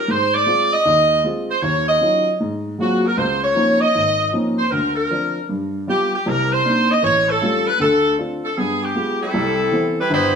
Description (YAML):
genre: jazz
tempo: 156 BPM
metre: 4/4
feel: swing 66% on 8ths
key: unclear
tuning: A4 = 440 Hz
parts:
  - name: bright saxophone section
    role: melody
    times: 0.0-10.4 s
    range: G3 to Eb5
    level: -17 LUFS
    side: equal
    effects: none
  - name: warm upright piano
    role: accompaniment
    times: 0.1-10.4 s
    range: G1 to G4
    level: -21 LUFS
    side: equal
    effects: none
room: wet stone room reverb, RT60 1.1 s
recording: band playing live in one room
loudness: -16 LUFS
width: side -6 dB against mid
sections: 0.0-9.3 A section; 9.3-10.4 B section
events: none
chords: 0.1 Ab6; 1.6 Ebm9; 2.4 Ab13; 3.2 Dbmaj13; 4.7 Bbadd9/D; 5.5 G7; 6.3 Cm9; 7.0 A7b13; 7.8 Dm7; 8.6 G7b9; 9.3 Cmaj7